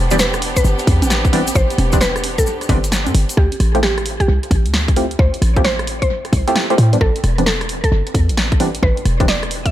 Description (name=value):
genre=UK garage, two-step garage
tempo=132 BPM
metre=4/4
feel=swing 65% on 16ths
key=D minor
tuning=A4 = 441 Hz
part: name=warm studio violin section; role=sustained chords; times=0.0-3.3 s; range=B3 to G4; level=-25 LUFS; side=right 1 dB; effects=sidechain pumping
part: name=short 808-style bass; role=bass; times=0.0-9.7 s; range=E1 to A2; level=-17 LUFS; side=equal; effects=none
part: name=punchy chord stab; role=stabs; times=0.1-9.3 s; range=E3 to G4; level=-21 LUFS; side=equal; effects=chorus, dub echo
part: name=punchy analog drum machine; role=drums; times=0.1-9.7 s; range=congas, hi-hat, rim click, snare drum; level=-22 LUFS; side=equal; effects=analog delay
part: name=tube shaker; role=percussion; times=0.1-3.4 s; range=none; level=-28 LUFS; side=left 4 dB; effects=none
part: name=mallet-like synth pluck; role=melody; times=0.2-9.7 s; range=G4 to E5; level=-23 LUFS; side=equal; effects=chorus, dub echo
part: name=electronic kick drum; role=drums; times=0.6-9.7 s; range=none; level=-18 LUFS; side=equal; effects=none
part: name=granular cloud pad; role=texture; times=5.2-9.7 s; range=C4 to G5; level=-39 LUFS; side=equal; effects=none
room=light reverb, digital ambience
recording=echo-heavy mix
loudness=-14 LUFS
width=side -13 dB against mid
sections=0.0-3.4 A section; 3.4-9.7 B section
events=drop 0.0-3.4; kick drops out 2.9-3.4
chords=0.0 Am11; 3.4 Dm11; 6.8 Am11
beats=0.19 0.65 1.10 | 1.56 2.01 2.46 2.92 | 3.37 3.83 4.28 4.74 | 5.19 5.65 6.10 6.56 | 7.01 7.46 7.92 8.37 | 8.83 9.28